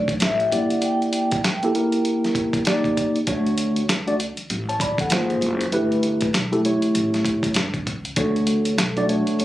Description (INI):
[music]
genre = hip hop, jazz-hop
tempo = 98 BPM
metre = 4/4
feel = swing 60% on 16ths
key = unclear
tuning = A4 = 438 Hz
[part]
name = vibraphone with soft mallets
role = melody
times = 0.0-2.0, 8.2-9.4 s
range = A4 to G5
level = -26 LUFS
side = left 1 dB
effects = analog delay
[part]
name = mellow tine electric piano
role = accompaniment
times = 0.0-9.4 s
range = A3 to B5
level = -20 LUFS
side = equal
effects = medium stereo tremolo
[part]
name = upright bass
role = bass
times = 0.0-9.4 s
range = F#1 to D2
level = -29 LUFS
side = equal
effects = none
[part]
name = dusty soul sampler-style drum kit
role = drums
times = 0.1-9.4 s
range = hi-hat, kick drum, snare drum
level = -24 LUFS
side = equal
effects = none
[sound]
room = light reverb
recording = recorded on a phone in the room, club reverb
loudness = -19 LUFS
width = side -15 dB against mid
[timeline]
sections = 0.0-9.4 A section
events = none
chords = 0.0 Dmaj7; 0.5 Gm6; 2.7 Ebmaj7; 3.3 Dmaj7; 5.1 G#69; 5.7 G69; 8.2 Dmaj7